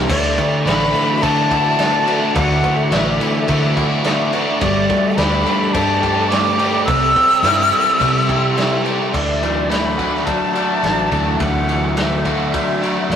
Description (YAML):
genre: rock, shoegaze and dream pop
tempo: 106 BPM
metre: 4/4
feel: straight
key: D mixolydian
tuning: A4 = 439 Hz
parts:
  - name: ethereal airy pad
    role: sustained chords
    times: 0.0-13.2 s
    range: F#4 to D6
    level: -28 LUFS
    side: left 3 dB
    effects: ensemble chorus, built-in reverb
  - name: twangy electric guitar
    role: arpeggios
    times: 0.0-13.2 s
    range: E3 to G4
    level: -30 LUFS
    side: equal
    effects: none
  - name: biting overdriven guitar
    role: riff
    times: 0.0-13.2 s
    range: C3 to G4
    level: -22 LUFS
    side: right 4 dB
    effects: none
  - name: crunchy overdriven guitar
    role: riff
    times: 0.0-13.2 s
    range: C3 to G4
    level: -22 LUFS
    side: left 4 dB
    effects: none
  - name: vintage muted fingered electric bass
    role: bass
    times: 0.0-13.2 s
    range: G1 to D3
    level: -23 LUFS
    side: right 1 dB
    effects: none
  - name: breathy bright jazz flute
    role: melody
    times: 0.1-13.2 s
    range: D5 to E6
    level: -19 LUFS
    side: left 1 dB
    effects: none
  - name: loose indie drum kit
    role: drums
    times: 0.1-13.2 s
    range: crash cymbal, kick drum, ride cymbal, snare drum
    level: -21 LUFS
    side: right 1 dB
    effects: none
room: wet stone room reverb, RT60 1.1 s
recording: rough rehearsal-room recording, warm saturation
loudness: -14 LUFS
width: side -8 dB against mid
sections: 0.1-9.1 A section; 9.1-13.2 B section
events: none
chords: 0.1 Dadd9; 4.6 Gsus2; 6.9 C; 9.1 Dadd9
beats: | 0.08 0.65 1.22 1.79 | 2.35 2.92 3.48 4.05 | 4.62 5.18 5.74 6.31 | 6.87 7.44 8.00 8.57 | 9.13 9.70 10.27 10.83 | 11.40 11.97 12.53 13.10